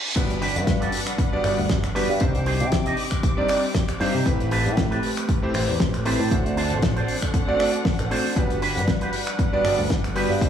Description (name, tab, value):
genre	nu-disco, nu disco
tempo	117 BPM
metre	4/4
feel	swing 55% on 16ths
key	G major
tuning	A4 = 439 Hz
part	reverse cymbal and impact	sound effects	0.0-2.2 s	none	-31 LUFS	right 1 dB	none
part	warm electric grand piano	accompaniment	0.2-10.5 s	G3 to D5	-26 LUFS	equal	sidechain pumping, tape echo
part	muted studio string section	sustained chords	0.2-10.5 s	G3 to D6	-31 LUFS	equal	sidechain pumping
part	picked electric bass with an envelope filter	bass	0.2-10.5 s	G1 to C3	-25 LUFS	equal	none
part	damped 70s drum kit	drums	0.2-10.5 s	crash cymbal, finger snaps, hi-hat, snare drum	-28 LUFS	left 2 dB	none
part	electronic kick drum	drums	0.2-10.5 s	none	-24 LUFS	equal	none
part	electric guitar with an envelope filter	riff	0.4-10.4 s	C4 to Eb5	-28 LUFS	right 3 dB	analog chorus, tape echo
room	light reverb, small room ambience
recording	studio reverb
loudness	-20 LUFS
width	side -9 dB against mid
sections	0.2-10.5 A section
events	break 0.0; reverse cymbal 0.0; drop 0.2-10.5; impact 0.2-2.2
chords	0.2 Gmaj7; 2.2 Cmadd9; 4.3 Am9; 6.3 D7; 8.4 Gmaj7